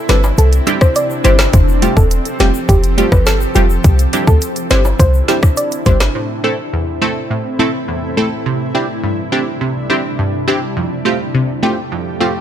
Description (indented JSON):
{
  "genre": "dancehall",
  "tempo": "104 BPM",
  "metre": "4/4",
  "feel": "straight",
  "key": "C major",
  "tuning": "A4 = 440 Hz",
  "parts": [
    { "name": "granular cloud pad", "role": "sustained chords", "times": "0.0-12.4 s", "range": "F2 to A4", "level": "-21 LUFS", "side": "equal", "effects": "built-in reverb" },
    { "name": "soft round pluck", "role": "melody", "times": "0.1-6.0 s", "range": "G4 to D5", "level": "-19 LUFS", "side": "equal", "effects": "chorus, digital delay" },
    { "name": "punchy chord stab", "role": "accompaniment", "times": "0.1-12.3 s", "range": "E2 to A4", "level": "-16 LUFS", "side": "right 1 dB", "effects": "chorus, sidechain pumping" },
    { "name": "short 808-style bass", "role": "bass", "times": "0.1-6.1 s", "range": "E1 to D2", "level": "-13 LUFS", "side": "equal", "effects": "none" },
    { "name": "island pop drum kit", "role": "drums", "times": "0.1-6.1 s", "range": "hi-hat, kick drum, rim click, snare drum", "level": "-13 LUFS", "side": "equal", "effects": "none" },
    { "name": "egg shaker and timbales", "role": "percussion", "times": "0.1-6.1 s", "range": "none", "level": "-28 LUFS", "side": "left 3 dB", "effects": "none" }
  ],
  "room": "digital ambience",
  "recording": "none",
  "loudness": "-12 LUFS",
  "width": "side -10 dB against mid",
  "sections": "0.0-6.2 A section; 6.2-12.4 B section",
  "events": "none",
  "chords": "0.0 Cadd9; 1.5 Fadd9; 3.8 Cadd9; 6.2 Am; 8.5 Cadd9; 10.8 Fadd9"
}